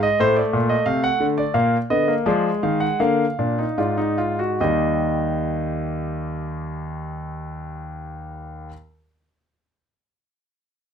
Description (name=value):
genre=classical, baroque-style 3-part fugue for grand piano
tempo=71-91 BPM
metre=4/4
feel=straight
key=unclear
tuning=A4 = 440 Hz
part: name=warm concert grand piano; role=solo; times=0.0-8.7 s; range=Eb2 to F#5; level=-20 LUFS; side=equal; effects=none
room=moderate studio ambience, RT60 0.5 s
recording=none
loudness=-19 LUFS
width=side -7 dB against mid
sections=0.0-4.6 A section; 4.6-8.0 B section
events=slowing down 0.0-4.6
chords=0.2 Am6; 1.5 Bb7; 4.6 Eb